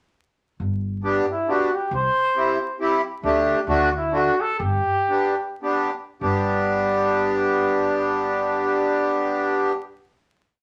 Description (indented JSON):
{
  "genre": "alpine folk, alpine dance band",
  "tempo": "98-138 BPM",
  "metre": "3/4",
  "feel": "swing 55% on 8ths",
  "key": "G major",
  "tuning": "A4 = 440 Hz",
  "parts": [
    { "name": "upright bass", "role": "bass", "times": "0.6-9.7 s", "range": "G1 to D2", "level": "-31 LUFS", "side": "equal", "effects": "none" },
    { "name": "accordion", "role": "accompaniment", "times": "1.0-9.7 s", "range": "A3 to G4", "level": "-23 LUFS", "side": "equal", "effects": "none" },
    { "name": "mellow trumpet", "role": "melody", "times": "1.3-5.6 s", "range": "E4 to C5", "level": "-24 LUFS", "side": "equal", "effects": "none" }
  ],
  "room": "wet studio reverb, RT60 0.5 s",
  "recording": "vinyl crackle",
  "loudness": "-22 LUFS",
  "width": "mono",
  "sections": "0.6-6.2 A section; 6.2-9.8 final chord",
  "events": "slowing down 3.2-6.2",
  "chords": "0.6 G; 1.9 C; 3.2 Dsus4; 3.7 D; 4.6 G",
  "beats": "| 0.59 1.04 1.48 | 1.92 2.36 2.79 | 3.23 3.67 4.12 | 4.59 5.08 5.61 | 6.20 6.81 7.41 | 8.01 8.61 9.22"
}